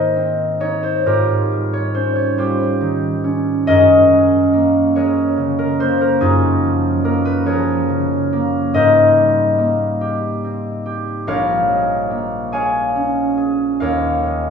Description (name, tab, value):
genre	classical, solo harp piece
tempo	47 BPM (dotted quarters)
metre	6/8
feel	rubato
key	Ab major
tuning	A4 = 445 Hz
part	concert harp	solo	0.0-14.5 s	Bb1 to Ab5	-14 LUFS	equal	none
room	wet scoring stage reverb, RT60 1.9 s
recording	heard from further back in the room, small room ambience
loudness	-14 LUFS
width	side -6 dB against mid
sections	0.0-14.5 A section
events	none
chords	0.0 Abadd9; 1.1 Eb13/Ab; 3.7 Gbadd9; 6.2 Db69/Gb; 8.7 Abmaj9; 11.3 Bbm7; 13.8 Eb9sus4